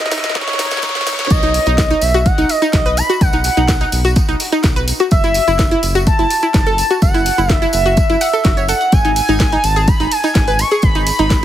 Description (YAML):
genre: progressive house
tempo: 126 BPM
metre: 4/4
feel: straight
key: unclear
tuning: A4 = 441 Hz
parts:
  - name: expressive synth lead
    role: melody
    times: 0.0-11.4 s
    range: C#5 to C#6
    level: -17 LUFS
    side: equal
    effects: analog chorus, cassette tape, digital delay
  - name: house drum kit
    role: drums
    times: 0.0-11.4 s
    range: hi-hat, ride cymbal, snare drum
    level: -23 LUFS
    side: equal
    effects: none
  - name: tambourine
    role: percussion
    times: 0.0-11.4 s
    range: none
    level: -27 LUFS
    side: right 1 dB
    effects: none
  - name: riser and swell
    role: sound effects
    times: 0.0-1.3 s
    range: none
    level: -25 LUFS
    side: left 1 dB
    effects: none
  - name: analog pluck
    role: arpeggios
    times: 0.1-11.2 s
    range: D#4 to F#5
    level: -19 LUFS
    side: equal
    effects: chorus, sidechain pumping, dub echo
  - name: electronic kick drum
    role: drums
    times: 0.4-11.4 s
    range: none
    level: -14 LUFS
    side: equal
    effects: overdrive
  - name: round analog bass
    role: bass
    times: 1.3-11.4 s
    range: F#1 to B1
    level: -19 LUFS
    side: equal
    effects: sidechain pumping
room: light reverb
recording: heavily compressed radio sound, multiband compression, high-pass filter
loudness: -12 LUFS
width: side -11 dB against mid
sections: 0.0-1.3 A section; 1.3-11.4 B section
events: build-up 0.0-1.3; drum fill 0.0-1.3; riser 0.0-1.3; filter sweep on synth arpeggio sound 0.0-1.3; swell 0.4-1.3; drop 1.3-11.4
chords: 0.0 N.C.; 1.3 B; 5.1 F#m7; 8.9 G#m